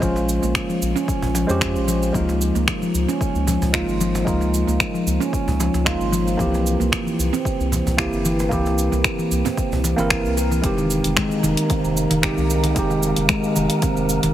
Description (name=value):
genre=organic downtempo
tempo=113 BPM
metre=4/4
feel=swing 53% on 16ths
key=F minor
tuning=A4 = 440 Hz
part: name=tine electric piano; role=accompaniment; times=0.0-14.3 s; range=Ab3 to C5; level=-24 LUFS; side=right 2 dB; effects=sidechain pumping, digital delay
part: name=handpan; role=arpeggios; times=0.0-14.3 s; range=Eb3 to Bb4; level=-22 LUFS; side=equal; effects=digital delay
part: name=round analog bass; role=bass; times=0.0-14.3 s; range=F1 to F2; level=-23 LUFS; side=left 1 dB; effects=sidechain pumping
part: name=deep house drum kit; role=drums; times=0.0-14.3 s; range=cabasa, finger snaps, hi-hat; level=-25 LUFS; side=right 1 dB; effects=none
part: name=electronic kick drum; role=drums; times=0.0-13.9 s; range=none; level=-26 LUFS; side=left 1 dB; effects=none
part: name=cajon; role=percussion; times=0.2-10.1 s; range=none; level=-31 LUFS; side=right 2 dB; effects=none
part: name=wind-like tuned noise texture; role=texture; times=11.0-14.3 s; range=Bb3 to Bb4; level=-29 LUFS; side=equal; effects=built-in reverb
room=light reverb, digital ambience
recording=heavily compressed radio sound, multiband compression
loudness=-18 LUFS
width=side -12 dB against mid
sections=0.0-10.6 A section; 10.6-14.3 B section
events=none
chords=0.0 Bbm7; 2.1 Db6; 6.4 C7; 10.6 Fm7